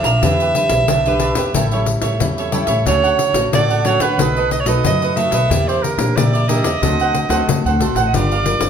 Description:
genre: samba and choro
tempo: 91 BPM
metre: 4/4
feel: straight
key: unclear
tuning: A4 = 444 Hz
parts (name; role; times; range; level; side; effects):
- warm soprano saxophone; melody; 0.0-8.7 s; Bb4 to E5; -19 LUFS; right 4 dB; none
- cavaquinho; accompaniment; 0.0-8.5 s; D4 to Bb5; -22 LUFS; right 5 dB; none
- nylon-string guitar; accompaniment; 0.0-8.7 s; A2 to B4; -22 LUFS; left 3 dB; none
- upright bass; bass; 0.0-8.7 s; G1 to D3; -20 LUFS; equal; none
- pandeiro; percussion; 0.0-8.7 s; none; -21 LUFS; left 5 dB; none
room: wet large studio reverb, RT60 0.9 s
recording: band playing live in one room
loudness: -14 LUFS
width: side -7 dB against mid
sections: 0.0-8.1 A section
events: none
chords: 0.2 Em7; 1.5 A7; 2.9 Dmaj7; 4.2 B7; 5.5 Em7b5; 6.8 D7; 8.1 Gm7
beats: | 0.23 0.89 1.55 2.21 | 2.87 3.53 4.19 4.84 | 5.50 6.16 6.82 7.48 | 8.14

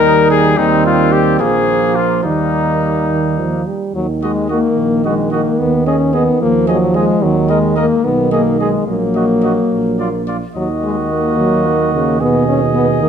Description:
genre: classical, brass quintet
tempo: 73 BPM (dotted quarters)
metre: 6/8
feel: straight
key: Eb major, Eb minor from 3.9 s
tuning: A4 = 440 Hz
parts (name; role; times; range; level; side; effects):
- warm trumpet; melody; 0.0-13.1 s; Eb4 to Eb5; -18 LUFS; left 7 dB; none
- mellow trumpet; second line; 0.0-13.1 s; Bb3 to Bb4; -22 LUFS; right 8 dB; none
- clear French horn; accompaniment; 0.0-13.1 s; F3 to Db4; -17 LUFS; left 3 dB; none
- warm trombone; accompaniment; 0.0-13.1 s; Cb3 to G3; -19 LUFS; right 4 dB; none
- mellow tuba; bass; 0.0-13.1 s; Bb1 to Eb2; -19 LUFS; right 4 dB; none
room: moderate recital hall reverb, RT60 1.6 s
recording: none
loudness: -12 LUFS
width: side -8 dB against mid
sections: 0.0-3.9 A section; 3.9-13.1 B section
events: none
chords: 0.0 Eb; 1.4 Bb5; 2.2 Eb; 3.9 Ebm; 5.6 Ab5/Eb; 7.2 Eb5; 8.0 Abm/Cb; 8.9 Ebm/Bb; 10.6 Ebm; 12.2 Abm/Eb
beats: | 0.58 1.41 | 2.25 3.10 | 3.94 4.78 | 5.59 6.41 | 7.23 8.05 | 8.88 9.71 | 10.55 11.38 | 12.21 13.02

